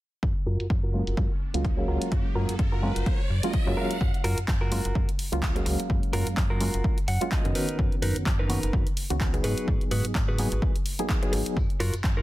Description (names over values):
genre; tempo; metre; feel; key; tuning
filtered disco house; 127 BPM; 4/4; swing 57% on 16ths; F# major; A4 = 439 Hz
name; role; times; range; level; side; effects
slap-like FM bass; bass; 0.2-12.2 s; F#1 to G#2; -28 LUFS; equal; sidechain pumping, low-pass filter
electronic kick drum; drums; 0.2-12.1 s; none; -27 LUFS; equal; studio reverb
punchy analog drum machine; drums; 0.2-12.1 s; handclaps, hi-hat; -34 LUFS; equal; sidechain pumping on hats, low-pass filter on hats, studio reverb, low-pass filter on snare
riser; sound effects; 1.1-4.0 s; none; -38 LUFS; right 1 dB; none
direct-recorded clean electric guitar; riff; 0.5-12.2 s; D#4 to F#5; -33 LUFS; right 1 dB; sidechain pumping, low-pass filter
reed electric piano; accompaniment; 0.9-11.6 s; D#3 to E#5; -31 LUFS; equal; overdrive, medium tremolo, phaser, vintage 12-bit sampler grit, sidechain pumping, low-pass filter
tambourine and congas; percussion; 11.6-12.2 s; none; -47 LUFS; left 4 dB; none
room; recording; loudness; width
digital ambience; dense, heavily limited modern master; -24 LUFS; side -16 dB against mid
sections
0.2-4.0 A section; 4.0-12.2 B section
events
filter sweep 0.2-4.0; riser 1.1-4.0; clean electric guitar fill 6.8-7.8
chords
0.2 F#maj7; 7.6 Bmaj7/F#; 9.4 G#m7; 11.6 F#maj7